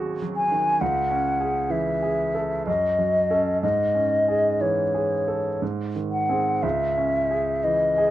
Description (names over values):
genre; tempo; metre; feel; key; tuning
classical, romantic duo for flute and grand piano; 58-68 BPM; 3/4; rubato; C# minor; A4 = 440 Hz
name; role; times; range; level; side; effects
bright grand piano; accompaniment; 0.0-8.1 s; C#2 to A4; -26 LUFS; right 3 dB; none
mellow hollow silver concert flute; melody; 0.4-8.1 s; C#5 to G#5; -22 LUFS; left 1 dB; none
room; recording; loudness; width
moderate studio reverb, RT60 0.6 s; worn, warbling old tape, cassette tape, warbly pitch drift; -21 LUFS; side -14 dB against mid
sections
0.0-8.1 A section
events
none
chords
0.0 Cdim/Eb; 0.8 C#m; 2.7 F#m; 3.6 C#m/G#; 5.6 G#; 6.6 C#m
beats
| 0.81 1.71 2.67 | 3.62 4.61 5.61 | 6.63 7.64